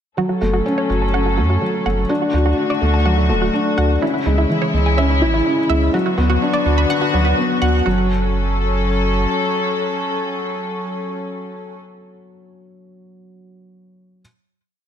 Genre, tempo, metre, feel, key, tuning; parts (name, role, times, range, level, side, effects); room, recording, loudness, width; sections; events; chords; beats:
piano and strings electronica; 125 BPM; 4/4; straight; F# minor; A4 = 440 Hz
dark studio string section; sustained chords; 0.2-11.8 s; C#3 to A4; -22 LUFS; left 2 dB; low-pass filter
analog pluck; arpeggios; 0.2-8.1 s; E4 to B5; -24 LUFS; right 3 dB; chorus, tape echo
felt-muted upright piano; riff; 0.2-14.2 s; E3 to F#4; -20 LUFS; left 1 dB; tape echo
warm sub bass; bass; 0.4-9.3 s; D1 to F#2; -18 LUFS; equal
moderate lush hall reverb, RT60 2.2 s; -15 LUFS; side -9 dB against mid
0.2-7.9 build; 7.9-11.7 final chord
build-up 0.2-7.9; filter sweep on synth arpeggio sound 0.2-7.9
0.2 F#m; 2.1 D; 4.0 C#m; 5.9 Bm/D; 7.9 F#m
| 0.18 0.66 1.14 1.62 | 2.10 2.58 3.06 3.54 | 4.02 4.50 4.98 5.46 | 5.94 6.42 6.90 7.38 | 7.86 8.34 8.82 9.30 | 9.78 10.26 10.74 11.22